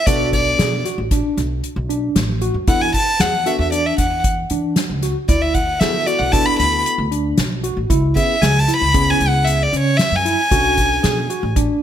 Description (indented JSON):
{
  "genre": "progressive instrumental, band music in an uneven meter",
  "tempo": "115 BPM",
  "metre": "5/4",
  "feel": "straight",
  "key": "unclear",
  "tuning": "A4 = 440 Hz",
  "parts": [
    { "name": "rich violin", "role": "melody", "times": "0.0-11.5 s", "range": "C#5 to B5", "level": "-18 LUFS", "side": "equal", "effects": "none" },
    { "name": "tine electric piano", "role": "accompaniment", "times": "0.1-11.2 s", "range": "B3 to A4", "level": "-26 LUFS", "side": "equal", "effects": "overdrive, fast stereo tremolo" },
    { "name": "tine electric piano", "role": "arpeggios", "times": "0.1-11.8 s", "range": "C#4 to G#4", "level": "-23 LUFS", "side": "right 1 dB", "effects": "medium stereo tremolo" },
    { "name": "upright bass", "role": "bass", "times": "0.1-11.7 s", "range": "A1 to E3", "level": "-21 LUFS", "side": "equal", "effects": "none" },
    { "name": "soft-mallet drum kit", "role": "drums", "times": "0.1-11.7 s", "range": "hi-hat, kick drum, snare drum", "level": "-20 LUFS", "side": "equal", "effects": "gated reverb" }
  ],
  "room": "light reverb, small room ambience",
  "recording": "bright 1980s-style digital production",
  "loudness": "-15 LUFS",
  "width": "side -10 dB against mid",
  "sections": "0.0-11.8 A section",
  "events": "violin solo 0.0-11.8",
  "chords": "0.1 Bm7; 2.7 E9sus4; 5.3 D69; 7.9 C#m7; 10.5 Bm7"
}